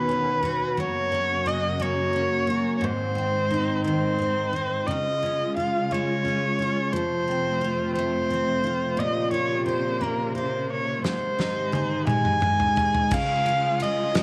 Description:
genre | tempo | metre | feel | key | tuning
six-eight pop ballad | 58 BPM (dotted quarters) | 6/8 | straight | Db major | A4 = 439 Hz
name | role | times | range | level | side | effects
warm erhu | melody | 0.0-14.2 s | Bb4 to Ab5 | -28 LUFS | equal | none
picked steel-string acoustic guitar | accompaniment | 0.0-14.2 s | Ab2 to C5 | -30 LUFS | equal | double-tracked
clear studio string section | sustained chords | 0.0-14.2 s | Eb2 to F4 | -33 LUFS | equal | none
modern studio drum kit | drums | 11.0-14.2 s | crash cymbal, kick drum, ride cymbal, snare drum, toms | -30 LUFS | equal | none
room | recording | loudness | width
moderate plate reverb, RT60 2.2 s | none | -25 LUFS | mono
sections
0.0-13.1 A section; 13.1-14.2 B section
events
drum fill 11.0-13.1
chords
0.0 Cbadd9/Eb; 0.8 Gb; 2.8 Ab; 4.9 Db; 6.9 F; 9.0 Bbmadd9; 11.0 Ab; 13.1 Db

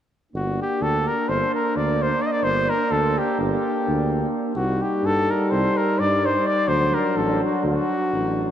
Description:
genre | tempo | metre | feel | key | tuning
balkan folk, Balkan brass band | 255 BPM (eighths) | 9/8 | straight | G harmonic minor | A4 = 440 Hz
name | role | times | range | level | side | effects
mellow euphonium | accompaniment | 0.3-8.5 s | D4 to Eb4 | -28 LUFS | left 3 dB | none
warm euphonium | accompaniment | 0.3-8.5 s | F#3 to Bb3 | -27 LUFS | right 3 dB | none
warm tuba | bass | 0.3-8.5 s | G1 to G2 | -25 LUFS | equal | none
warm flugelhorn | melody | 0.4-8.5 s | F#4 to Eb5 | -22 LUFS | left 1 dB | none
room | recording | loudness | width
wet cathedral reverb, RT60 5.6 s | in a vast, echoing space | -19 LUFS | side -10 dB against mid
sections
0.3-8.5 A section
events
none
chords
0.3 Gm; 4.6 Cm; 6.7 D

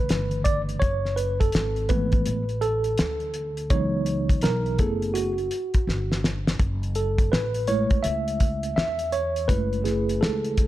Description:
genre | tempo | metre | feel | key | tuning
hip hop, jazz-hop | 83 BPM | 4/4 | swing 64% on 16ths | F# minor | A4 = 441 Hz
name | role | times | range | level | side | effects
mellow tine electric piano | accompaniment | 0.0-10.7 s | C#3 to E5 | -26 LUFS | right 1 dB | medium stereo tremolo
upright bass | bass | 0.1-10.7 s | F#1 to E2 | -28 LUFS | equal | none
cloth-damped thuddy drum kit | drums | 0.1-10.7 s | hi-hat, kick drum, snare drum | -24 LUFS | equal | none
room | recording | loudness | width
light reverb, small room ambience | dark, warm production | -22 LUFS | side -14 dB against mid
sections
0.0-6.6 A section; 6.6-10.7 B section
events
tine electric piano solo 0.0-6.6, 6.6-10.7; drum fill 5.9-6.6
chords
0.0 Bm11; 0.8 F#m11; 3.7 C#m11; 4.8 F#m11; 6.6 F#m9

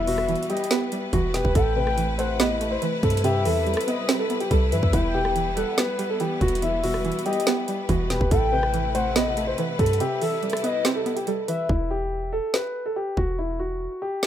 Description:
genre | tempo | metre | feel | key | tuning
hip hop, trap | 142 BPM | 4/4 | half-time | E minor | A4 = 440 Hz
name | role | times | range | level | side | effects
dark grand piano | melody | 0.0-14.3 s | E4 to D#5 | -26 LUFS | equal | low-pass filter, ping-pong delay
gliding portamento lead | second line | 0.0-11.7 s | B4 to G5 | -30 LUFS | left 4 dB | chorus, ping-pong delay
string-like resonator pluck | accompaniment | 0.0-11.7 s | E2 to C4 | -29 LUFS | right 5 dB | chorus, low-pass filter
clear symphonic string section | sustained chords | 0.0-11.7 s | C3 to B4 | -31 LUFS | left 2 dB | none
clean 808-style bass | bass | 0.0-13.9 s | E1 to G2 | -26 LUFS | equal | none
trap drum kit | drums | 0.1-14.3 s | hi-hat, kick drum, rim click, snare drum | -27 LUFS | equal | none
room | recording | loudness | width
digital ambience | rough home demo mix | -21 LUFS | side -10 dB against mid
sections
0.0-11.7 A section; 11.7-14.3 B section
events
break 10.0-11.7, 11.7-14.3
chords
0.0 Em; 1.6 Amadd9; 3.2 Cmaj7; 4.9 Em; 8.3 Amadd9; 10.0 Cmaj7; 11.7 Em

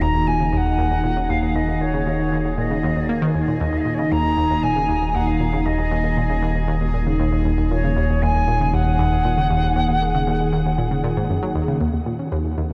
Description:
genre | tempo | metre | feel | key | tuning
ambient, sequencer-driven space music | 117 BPM | 4/4 | straight | Eb minor | A4 = 442 Hz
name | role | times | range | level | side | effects
wooden flute | melody | 0.0-11.3 s | Db5 to Bb5 | -27 LUFS | equal | tape echo
sweeping resonant pad | sustained chords | 0.0-12.7 s | Eb3 to Gb4 | -26 LUFS | equal | chorus
analog pluck | riff | 0.0-12.7 s | Eb2 to Bb3 | -26 LUFS | equal | chorus, tape echo
round analog bass | bass | 0.0-11.8 s | Eb1 | -27 LUFS | equal | none
bubbling stepped-filter texture | texture | 0.0-12.7 s | C4 to Ab4 | -36 LUFS | equal | chorus, built-in reverb
room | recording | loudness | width
moderate huge ambient reverb, RT60 7.6 s | none | -20 LUFS | mono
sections
0.0-11.8 A section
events
fade-in on synth texture 0.0-11.8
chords
0.0 Ebm

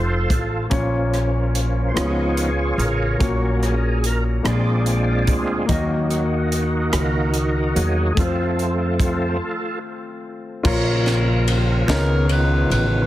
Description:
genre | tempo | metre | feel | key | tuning
slow gospel | 48 BPM (dotted quarters) | 6/8 | straight | unclear | A4 = 440 Hz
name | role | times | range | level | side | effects
warm concert grand piano | accompaniment | 0.0-13.1 s | Bb2 to Bb5 | -24 LUFS | left 3 dB | none
overdriven tonewheel organ | sustained chords | 0.0-13.1 s | Db3 to D5 | -24 LUFS | right 1 dB | slow rotary speaker, chorus vibrato
upright bass | bass | 0.0-13.1 s | F1 to F2 | -21 LUFS | equal | none
crisp fusion drum kit | drums | 0.3-12.9 s | crash cymbal, hi-hat, kick drum, ride cymbal, rim click, snare drum | -24 LUFS | equal | none
mellow saxophone section | melody | 11.9-13.1 s | Eb4 to Cb5 | -23 LUFS | equal | none
group handclap | percussion | 11.9-12.3 s | none | -33 LUFS | right 2 dB | none
room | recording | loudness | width
light reverb | heavily compressed radio sound | -18 LUFS | side -14 dB against mid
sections
0.0-10.7 A section; 10.7-13.1 B section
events
tonewheel organ solo 0.0-10.7; break 9.4-10.7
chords
0.0 F; 0.7 Bbm; 2.0 Db7; 3.2 Gb/Bb; 4.4 Bb7; 5.7 Ebm; 8.2 F; 10.7 Bbm; 11.9 Db13

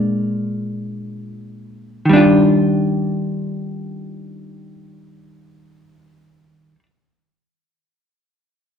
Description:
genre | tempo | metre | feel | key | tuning
jazz | free time | none | none | Eb major | A4 = 440 Hz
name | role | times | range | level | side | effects
vintage hollow-body jazz guitar | accompaniment | 0.0-6.9 s | Bb2 to F4 | -16 LUFS | equal | none
room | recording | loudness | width
light reverb | dark, warm production | -15 LUFS | side -7 dB against mid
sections
0.0-2.1 A section; 2.1-8.3 B section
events
slowing down 0.0-2.1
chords
0.0 Bb7; 2.1 Ebmaj9

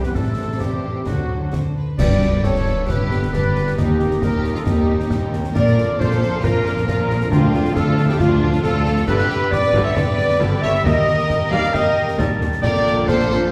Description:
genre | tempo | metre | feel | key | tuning
cinematic, heroic adventure film score | 135 BPM | 4/4 | straight | unclear | A4 = 439 Hz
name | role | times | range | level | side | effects
warm symphonic violin section | melody | 0.0-13.5 s | D4 to D5 | -32 LUFS | equal | none
flute section | second line | 0.0-13.5 s | F4 to F5 | -32 LUFS | equal | none
mellow clarinet | second line | 0.0-13.5 s | F4 to F5 | -32 LUFS | equal | none
rich chamber violin section | second line | 0.0-13.5 s | Bb3 to C5 | -37 LUFS | equal | none
warm oboe | second line | 0.0-13.5 s | F#4 to B5 | -34 LUFS | equal | none
warm symphonic viola section | accompaniment | 0.0-13.5 s | D3 to B3 | -32 LUFS | equal | none
mellow French horn section | sustained chords | 0.0-13.5 s | F#3 to F5 | -26 LUFS | equal | none
concert harp | arpeggios | 0.0-13.5 s | G2 to C6 | -29 LUFS | equal | none
mellow trumpet section | stabs | 0.0-13.5 s | F4 to F5 | -30 LUFS | equal | none
warm symphonic cello section | bass | 0.0-13.5 s | D2 to E3 | -27 LUFS | equal | none
warm symphonic double bass section | bass | 0.0-13.5 s | G1 to Eb2 | -27 LUFS | equal | none
concert snare drum, concert bass drum and clash cymbals | drums | 0.0-13.4 s | none | -27 LUFS | equal | none
clash cymbals and concert bass drum | percussion | 2.0-2.8 s | none | -28 LUFS | equal | none
timpani | percussion | 2.0-2.6, 7.3-7.9 s | G2 to D3 | -28 LUFS | equal | none
room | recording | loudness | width
wet recital hall reverb, RT60 1.4 s | heard from further back in the room | -18 LUFS | mono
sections
0.0-2.0 A section; 2.0-13.5 B section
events
band accent 2.0-2.4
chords
0.2 Am; 1.1 D7; 2.0 G; 3.8 Eb; 5.6 Bb; 7.3 Dm; 9.1 G; 10.9 Eb; 12.6 Bb

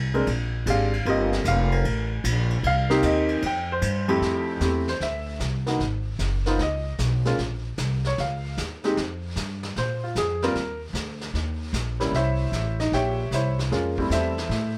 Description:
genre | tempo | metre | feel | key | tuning
jazz piano trio | 152 BPM | 4/4 | swing 67% on 8ths | unclear | A4 = 440 Hz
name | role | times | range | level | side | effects
upright bass | bass | 0.0-14.8 s | F1 to Bb2 | -28 LUFS | equal | none
warm concert grand piano | melody | 0.1-14.7 s | F2 to G5 | -27 LUFS | equal | none
vintage brush drum kit | drums | 0.1-14.8 s | brushed snare drum, hi-hat, kick drum, ride cymbal, snare drum | -36 LUFS | equal | none
room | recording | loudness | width
light reverb | none | -25 LUFS | mono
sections
0.0-4.2 A section; 4.2-14.8 B section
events
grand piano solo 0.0-4.2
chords
0.3 Bb13; 1.1 Eb69; 2.6 Cm7; 3.4 Fsus2; 4.2 Fmaj9; 5.8 Ab7(no3); 6.6 Db7sus2; 7.4 Bbmadd9; 9.0 Fsus2; 9.8 Bbsus2; 10.6 Eb5; 12.1 C7b9; 13.7 Fmaj9

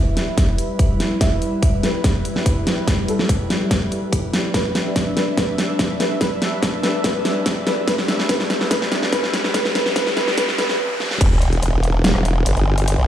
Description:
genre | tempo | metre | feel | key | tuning
heavy wobble dubstep | 144 BPM | 4/4 | half-time | E minor | A4 = 439 Hz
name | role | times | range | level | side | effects
felt-muted upright piano | melody | 0.0-10.8 s | A4 to E5 | -25 LUFS | equal | tape echo
lush unison pad | sustained chords | 0.0-10.8 s | G3 to E5 | -25 LUFS | equal | chorus, sidechain pumping
big-room dance drum kit | drums | 0.2-13.0 s | crash cymbal, hi-hat, rim click, snare drum | -21 LUFS | equal | none
electronic kick drum | drums | 0.4-11.3 s | none | -20 LUFS | equal | none
riser, noise sweep and sub drop | sound effects | 6.7-12.9 s | none | -28 LUFS | equal | none
formant-sweep wobble bass | bass | 11.2-13.1 s | E1 to B1 | -16 LUFS | equal | chorus, overdrive
room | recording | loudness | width
moderate digital room reverb, RT60 1.2 s | played on a big sound system in a bare room, stone room reverb, high-pass filter | -17 LUFS | side -10 dB against mid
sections
0.0-11.2 A section; 11.2-13.1 B section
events
build-up 0.0-11.2; drum fill 0.0-10.8, 11.0; filter sweep on analog synth pad 0.0-11.2; filter sweep 0.0-11.2; riser 6.7-11.2; noise sweep 9.5-11.2; stop 10.8-11.2; drop 11.2-13.1; impact 11.2-12.9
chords
0.0 Em

